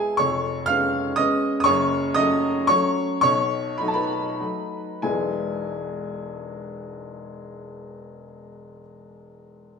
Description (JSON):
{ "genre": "classical, piano waltz", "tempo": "85-129 BPM", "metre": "3/4", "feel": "rubato", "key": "E major", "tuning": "A4 = 440 Hz", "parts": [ { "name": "warm upright piano", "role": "solo", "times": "0.0-9.8 s", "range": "E1 to E#6", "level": "-22 LUFS", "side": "equal", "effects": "none" } ], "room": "wet recital hall reverb, RT60 1.4 s", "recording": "minimal, uncompressed stereo recording", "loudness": "-20 LUFS", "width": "side -5 dB against mid", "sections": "0.0-5.0 A section; 5.0-8.3 B section", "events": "slowing down 0.9-5.0", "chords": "0.2 C#7/E#; 1.7 F#m; 3.2 B7; 5.0 E" }